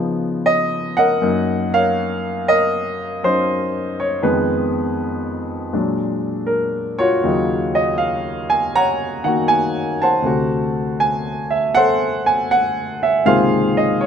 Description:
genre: solo jazz.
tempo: 80 BPM.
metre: 4/4.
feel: swing 68% on 8ths.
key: unclear.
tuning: A4 = 440 Hz.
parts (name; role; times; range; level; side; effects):
warm concert grand piano; solo; 0.0-14.1 s; Db2 to Bb5; -16 LUFS; equal; none.
room: light reverb.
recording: none.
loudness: -16 LUFS.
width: side -8 dB against mid.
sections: 0.0-14.1 A section.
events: none.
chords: 0.0 Db9; 1.2 Gb6; 4.2 Fm7b5; 5.7 Bb7b13; 7.2 Ebm9; 10.2 D7; 13.3 Dbmaj13.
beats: 0.47 | 1.22 1.97 2.72 3.47 | 4.22 4.97 5.73 6.48 | 7.23 7.99 8.74 9.49 | 10.25 11.00 11.76 12.51 | 13.27 14.02.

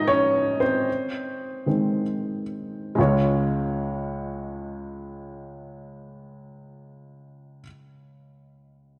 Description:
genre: pop.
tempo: free time.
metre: none.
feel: none.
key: Db major.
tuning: A4 = 441 Hz.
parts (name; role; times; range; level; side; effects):
dark upright piano; accompaniment; 0.0-9.0 s; Db2 to Eb5; -26 LUFS; equal; none.
room: moderate echo chamber reverb, RT60 2.6 s.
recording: none.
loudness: -25 LUFS.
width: mono.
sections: 0.0-3.0 A section; 3.0-7.2 B section.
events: upright piano solo 0.0-3.0.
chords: 0.0 Ebsus4; 0.9 Ab; 3.0 Db.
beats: free time.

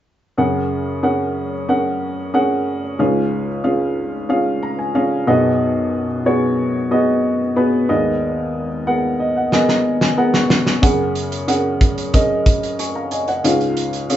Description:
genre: piano-driven pop.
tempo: 92 BPM.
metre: 4/4.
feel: straight.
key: F# major.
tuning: A4 = 441 Hz.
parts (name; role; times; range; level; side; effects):
warm upright piano; accompaniment; 0.4-14.2 s; G#1 to C#6; -16 LUFS; equal; none.
loose indie drum kit; drums; 9.5-14.2 s; hi-hat, kick drum, snare drum; -17 LUFS; equal; none.
room: wet studio ambience, RT60 0.5 s.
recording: band playing live in one room, nothing above 7.7 kHz.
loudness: -16 LUFS.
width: side -11 dB against mid.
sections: 0.4-14.2 A section.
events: upright piano fill 4.3-5.6, 8.9-10.8; drum fill 9.5-10.8.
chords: 0.4 F#add9; 3.0 C#; 5.3 B6; 7.9 G#madd9; 10.8 F#add9; 13.4 C#.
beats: | 0.38 1.03 1.68 2.34 | 2.99 3.64 4.30 4.95 | 5.60 6.26 6.91 7.56 | 8.21 8.87 9.52 10.18 | 10.83 11.48 12.13 12.79 | 13.44 14.09.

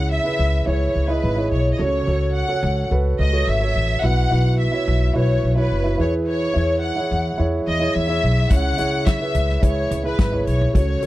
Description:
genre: piano-driven pop.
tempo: 107 BPM.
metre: 4/4.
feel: straight.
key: unclear.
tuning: A4 = 440 Hz.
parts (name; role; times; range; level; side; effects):
warm studio violin section; melody; 0.0-11.1 s; B4 to F#5; -24 LUFS; left 2 dB; none.
dark grand piano; accompaniment; 0.0-11.1 s; B2 to E5; -23 LUFS; right 2 dB; none.
upright bass; bass; 0.0-11.1 s; F#1 to E2; -20 LUFS; equal; none.
natural country drum kit; drums; 8.5-11.1 s; hi-hat, kick drum, snare drum, toms; -20 LUFS; equal; none.
room: small room ambience.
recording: dry, close 1970s-style studio recording.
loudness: -17 LUFS.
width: side -16 dB against mid.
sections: 0.0-11.1 A section.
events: none.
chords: 0.0 C#m; 1.8 F#m/C#; 4.0 Bsus4; 6.0 E; 8.5 C#m.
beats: 0.11 0.67 1.23 | 1.79 2.35 2.91 3.47 | 4.03 4.59 5.15 5.71 | 6.27 6.83 7.39 7.95 | 8.51 9.07 9.63 10.19 | 10.75.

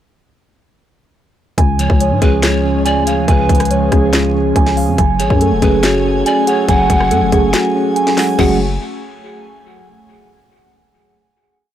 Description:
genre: hip hop, trap.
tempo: 141 BPM.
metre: 4/4.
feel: half-time.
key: F# harmonic minor.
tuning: A4 = 438 Hz.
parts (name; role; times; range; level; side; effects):
mellow tine electric piano; accompaniment; 1.6-8.6 s; C#3 to G#4; -18 LUFS; equal; medium stereo tremolo.
airy breathy pad; sustained chords; 1.8-8.6 s; E#3 to G#5; -23 LUFS; left 2 dB; chorus, phaser.
muted felt-like synth keys; arpeggios; 1.6-8.6 s; A3 to G#5; -17 LUFS; right 3 dB; chorus, tape echo.
growling 808-style bass; bass; 1.6-8.8 s; E#1 to G#2; -17 LUFS; left 1 dB; none.
trap drum kit; drums; 1.6-8.5 s; crash cymbal, handclaps, hi-hat, kick drum, rim click, snare drum; -16 LUFS; equal; none.
breathy mellow pan flute; second line; 1.8-8.6 s; B4 to F#5; -22 LUFS; left 3 dB; tape echo.
room: light reverb.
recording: dry, gritty hardware recording, transformer saturation.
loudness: -11 LUFS.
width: side -11 dB against mid.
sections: 1.6-8.4 hook; 8.4-10.1 final chord.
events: kick muted 7.5-8.4.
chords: 1.6 C#; 5.0 F#madd9.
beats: | 1.58 2.00 2.43 2.86 | 3.28 3.71 4.13 4.56 | 4.98 5.41 5.83 6.26 | 6.68 7.11 7.54 7.96 | 8.39.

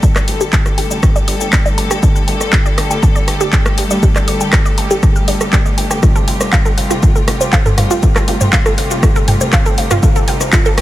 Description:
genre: melodic techno.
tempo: 120 BPM.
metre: 4/4.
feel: straight.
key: unclear.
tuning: A4 = 440 Hz.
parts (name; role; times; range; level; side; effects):
clear symphonic string section; sustained chords; 0.0-10.8 s; C3 to A4; -20 LUFS; left 1 dB; sidechain pumping.
wide unison pluck; arpeggios; 0.0-10.8 s; F4 to F6; -20 LUFS; right 1 dB; sidechain pumping, digital delay.
fat analog bass; bass; 0.0-10.8 s; D1 to G2; -29 LUFS; equal; none.
electronic kick drum; drums; 0.0-10.6 s; none; -13 LUFS; equal; studio reverb.
house drum kit; drums; 0.0-10.8 s; handclaps, hi-hat, rim click, shaker, toms; -18 LUFS; equal; studio reverb.
room: light reverb.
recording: none.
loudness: -10 LUFS.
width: side -14 dB against mid.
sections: 0.0-10.8 A section.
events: build-up 0.0-10.8; filter sweep on synth arpeggio sound 0.0-10.8.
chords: 0.0 Gsus2; 6.0 Fadd9.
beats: | 0.03 0.53 1.03 1.53 | 2.03 2.53 3.03 3.53 | 4.03 4.53 5.03 5.53 | 6.03 6.53 7.03 7.53 | 8.03 8.53 9.03 9.53 | 10.03 10.53.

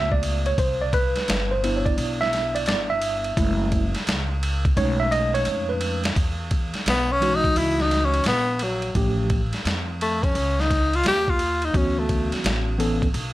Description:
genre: hip hop, jazz-hop.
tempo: 86 BPM.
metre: 4/4.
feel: swing 64% on 16ths.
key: E major.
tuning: A4 = 440 Hz.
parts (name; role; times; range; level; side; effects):
tine electric piano; accompaniment; 0.0-13.1 s; E3 to E5; -24 LUFS; right 1 dB; overdrive, fast stereo tremolo, plate reverb.
upright bass; bass; 0.0-13.3 s; F#1 to F2; -26 LUFS; equal; none.
boom bap sampler-style drum kit; drums; 0.1-13.3 s; hi-hat, kick drum, ride cymbal, snare drum; -25 LUFS; equal; none.
breathy tenor saxophone; melody; 6.9-12.3 s; F#3 to G4; -22 LUFS; left 1 dB; plate reverb.
room: light reverb.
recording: none.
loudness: -20 LUFS.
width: side -16 dB against mid.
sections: 0.0-6.2 A section; 6.2-13.3 A section.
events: tine electric piano solo 0.0-6.2; drum fill 4.8-6.2; tenor saxophone solo 6.2-13.3.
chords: 0.0 G7 (rootless); 0.6 Cmaj9; 3.4 F#m7; 4.8 B13; 6.2 Emaj9; 9.0 Aaug7; 11.7 Dmaj13.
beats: | 0.58 1.28 1.98 2.68 | 3.38 4.07 4.77 5.47 | 6.17 6.86 7.56 8.26 | 8.96 9.65 10.35 11.05 | 11.75 12.45 13.14.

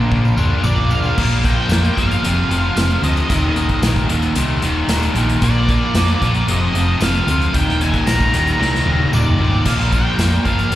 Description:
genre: indie rock.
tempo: 113 BPM.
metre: 4/4.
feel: straight.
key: Eb major.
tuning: A4 = 440 Hz.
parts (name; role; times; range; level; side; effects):
biting overdriven guitar; riff; 0.0-10.8 s; Eb2 to F4; -20 LUFS; left 5 dB; slapback echo.
fuzz guitar; riff; 0.0-10.8 s; Eb2 to F4; -23 LUFS; right 6 dB; distortion, analog chorus, slapback echo.
hollow-body short-scale fingered electric bass; bass; 0.0-10.8 s; Eb1 to F2; -18 LUFS; equal; none.
unplugged drum kit; drums; 0.1-10.8 s; crash cymbal, hi-hat, kick drum, snare drum, toms; -21 LUFS; equal; none.
tambourine; percussion; 0.2-10.3 s; none; -34 LUFS; right 4 dB; none.
octave-fuzz lead guitar; melody; 0.6-10.8 s; D5 to Bb5; -23 LUFS; right 2 dB; distortion, slapback echo, analog delay.
room: little or no reverb.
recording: live gig heard through the venue's PA, recital hall reverb.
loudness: -14 LUFS.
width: side -14 dB against mid.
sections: 0.0-1.2 A section; 1.2-10.8 B section.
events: drum fill 0.0-1.2, 8.6-9.7.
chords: 0.0 Bb; 1.2 Bb5; 2.2 F5; 3.3 Eb5; 5.4 Bb; 6.5 F5; 7.5 Eb5; 9.7 Bb5.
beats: 0.12 0.65 | 1.18 1.71 2.24 2.77 | 3.30 3.83 4.36 4.89 | 5.42 5.95 6.48 7.01 | 7.54 8.07 8.60 9.13 | 9.66 10.19 10.72.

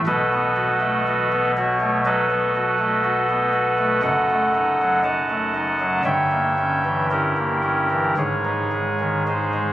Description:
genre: classical, chorale-style piece for pipe organ.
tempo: 55-61 BPM.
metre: 4/4.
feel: rubato.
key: unclear.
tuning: A4 = 440 Hz.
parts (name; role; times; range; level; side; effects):
chamber organ, soft reed; solo; 0.1-9.7 s; F#1 to A5; -18 LUFS; equal; none.
room: wet cathedral reverb, RT60 5.7 s.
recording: recorded on a phone in the room, club reverb.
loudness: -18 LUFS.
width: side -13 dB against mid.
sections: 0.0-9.7 A section.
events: none.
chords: 0.0 B7; 4.0 D#dim/F#; 6.1 Gdim7; 8.2 G#.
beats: | 0.04 1.04 2.04 3.04 | 4.05 5.04 6.05 7.10 | 8.17 9.27.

